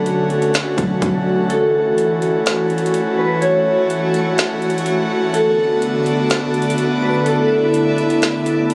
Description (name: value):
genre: hip hop, atmospheric cloud-rap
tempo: 125 BPM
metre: 4/4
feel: half-time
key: unclear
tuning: A4 = 439 Hz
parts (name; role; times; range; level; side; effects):
- mellow electric guitar; melody; 0.0-8.2 s; A4 to C#5; -22 LUFS; equal; lush chorus, low-pass filter, tape echo
- airy breathy pad; sustained chords; 0.0-8.7 s; D3 to F#4; -20 LUFS; equal; chorus, sidechain pumping
- long sustained 808-style bass; bass; 0.0-1.5 s; B1; -23 LUFS; equal; none
- trap drum kit; drums; 0.1-8.7 s; hi-hat, kick drum, snare drum; -24 LUFS; equal; none
- backwards swelling texture; texture; 3.2-8.7 s; A3 to D5; -30 LUFS; equal; built-in reverb
room: light reverb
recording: recorded on a phone in the room, club ambience, compression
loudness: -17 LUFS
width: mono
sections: 0.0-8.7 A section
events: kick muted 1.5-8.7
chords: 0.0 Bm7; 1.5 A6; 5.3 Bm7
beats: 0.06 0.54 1.02 | 1.50 1.98 2.46 2.94 | 3.42 3.90 4.38 4.86 | 5.34 5.82 6.30 6.78 | 7.26 7.74 8.22 8.70